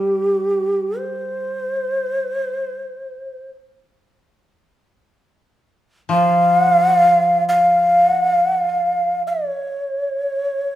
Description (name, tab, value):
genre	japanese traditional, Japanese chamber music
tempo	free time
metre	none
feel	none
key	unclear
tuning	A4 = 440 Hz
part	breathy mellow shakuhachi	melody	0.0-10.8 s	G4 to F5	-16 LUFS	equal	none
part	koto	accompaniment	0.0-9.5 s	F3 to G4	-26 LUFS	left 4 dB	none
room	wet recital hall reverb, RT60 1.3 s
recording	minimal, uncompressed stereo recording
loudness	-16 LUFS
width	side -13 dB against mid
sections	0.0-10.8 A section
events	none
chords	none